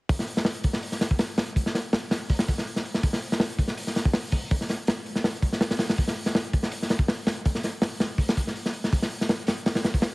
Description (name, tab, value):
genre	drum and bass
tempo	163 BPM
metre	4/4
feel	swing 53% on 16ths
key	none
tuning	none
part	crunchy breakbeat drum kit	drums	0.1-10.1 s	hi-hat, kick drum, snare drum	-24 LUFS	equal	none
room	light reverb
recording	heavily compressed radio sound, vinyl crackle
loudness	-24 LUFS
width	side -25 dB against mid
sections	0.1-10.1 A section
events	none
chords	none